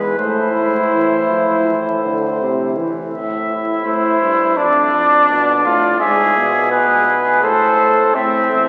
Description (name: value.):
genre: classical, imitative canzona for brass ensemble.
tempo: 83 BPM.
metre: 4/4.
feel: straight.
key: A minor.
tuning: A4 = 439 Hz.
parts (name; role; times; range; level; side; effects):
mellow cornet; melody; 0.0-8.7 s; B4 to E5; -20 LUFS; equal; none.
clear trombone; accompaniment; 0.0-3.1 s; C3 to A3; -26 LUFS; equal; none.
mellow euphonium; bass; 0.0-8.7 s; E2 to B2; -26 LUFS; equal; none.
dark trumpet; second line; 0.2-8.7 s; C4 to A4; -19 LUFS; equal; none.
room: wet cathedral reverb, RT60 4.3 s.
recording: very old 78 rpm record, vinyl crackle.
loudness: -15 LUFS.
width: mono.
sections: 0.0-3.1 A section; 3.1-8.7 B section.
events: none.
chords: 0.2 Am; 4.6 Dm/F; 6.0 E/G#; 7.4 Am.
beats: | 0.19 0.93 1.67 2.40 | 3.13 3.85 4.57 5.29 | 6.01 6.72 7.43 8.15.